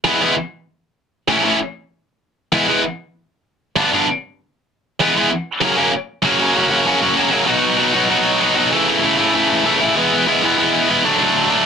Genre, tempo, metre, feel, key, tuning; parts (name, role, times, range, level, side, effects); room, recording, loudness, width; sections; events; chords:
punk; 194 BPM; 4/4; straight; A4 = 440 Hz
tight distorted guitar; solo; 0.0-11.7 s; F#2 to F#4; -13 LUFS; equal; distortion
light reverb; dense, heavily limited modern master; -14 LUFS; side -6 dB against mid
0.0-6.2 A section; 6.2-7.5 B section; 7.5-11.7 C section
half time 0.0-6.2
0.1 E; 1.3 A; 2.5 E; 3.8 G; 5.0 E; 5.6 F#; 7.5 B; 8.7 A/C#; 9.9 E; 11.0 D